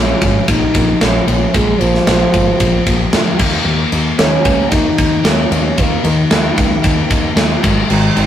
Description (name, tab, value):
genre	hard rock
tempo	113 BPM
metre	4/4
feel	straight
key	unclear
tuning	A4 = 441 Hz
part	mellow French horn	melody	0.0-8.3 s	Eb3 to Eb4	-18 LUFS	right 1 dB	none
part	high-gain distorted guitar	riff	0.0-8.3 s	Ab2 to Eb4	-18 LUFS	left 4 dB	distortion
part	growling fingered electric bass	bass	0.0-8.3 s	Ab1 to Eb2	-18 LUFS	equal	overdrive
part	tight metal drum kit	drums	0.2-8.3 s	crash cymbal, kick drum, ride cymbal, snare drum	-15 LUFS	equal	none
part	tight distorted guitar	riff	7.9-8.3 s	Ab2 to Eb4	-19 LUFS	right 4 dB	distortion
room	light reverb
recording	rough rehearsal-room recording, warm saturation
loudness	-11 LUFS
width	side -10 dB against mid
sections	0.0-8.3 A section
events	French horn solo 0.0-8.3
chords	0.0 Bbm; 3.4 Eb5; 7.6 Ab